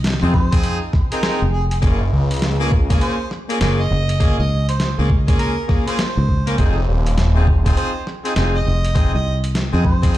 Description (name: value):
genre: glitch hop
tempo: 101 BPM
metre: 4/4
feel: swing 63% on 16ths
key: F phrygian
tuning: A4 = 440 Hz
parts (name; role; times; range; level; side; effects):
- fingered electric bass; bass; 0.0-10.2 s; F1 to F2; -18 LUFS; equal; none
- boom bap sampler-style drum kit; drums; 0.0-10.2 s; hi-hat, snare drum; -26 LUFS; equal; none
- bright horn section; stabs; 0.2-10.2 s; Bb3 to Bb4; -24 LUFS; left 1 dB; sidechain pumping, digital delay
- mellow harmonica; melody; 0.3-10.1 s; Ab4 to Eb5; -28 LUFS; right 3 dB; digital delay
- electronic kick drum; drums; 0.3-10.1 s; none; -16 LUFS; equal; none
- phased detuned saw bass; bass; 1.8-3.0, 6.6-7.8 s; Eb1 to Db2; -16 LUFS; equal; phaser
room: digital ambience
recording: played on a big sound system in a bare room, large studio reverb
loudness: -15 LUFS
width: side -14 dB against mid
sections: 0.0-10.2 A section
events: none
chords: 0.0 Fm7; 1.8 Gbmaj9; 6.6 Fm7